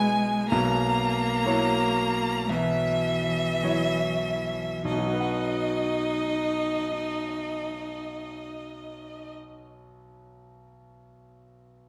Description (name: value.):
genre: classical, slow romantic movement for piano trio.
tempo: 47-66 BPM.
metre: 4/4.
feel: rubato.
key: B major.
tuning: A4 = 440 Hz.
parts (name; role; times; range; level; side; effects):
warm violin; melody; 0.0-9.3 s; D#5 to A#5; -32 LUFS; equal; none.
rich cello; second line; 0.0-9.3 s; E3 to D#4; -31 LUFS; equal; none.
clear concert grand piano; accompaniment; 0.0-11.9 s; B1 to F#5; -32 LUFS; equal; none.
room: wet scoring stage reverb, RT60 1.7 s.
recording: none.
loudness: -26 LUFS.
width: mono.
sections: 0.0-4.9 A section; 4.9-9.4 B section.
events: slowing down 0.0-4.9.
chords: 0.0 E/B; 0.5 F#7/B; 4.9 B.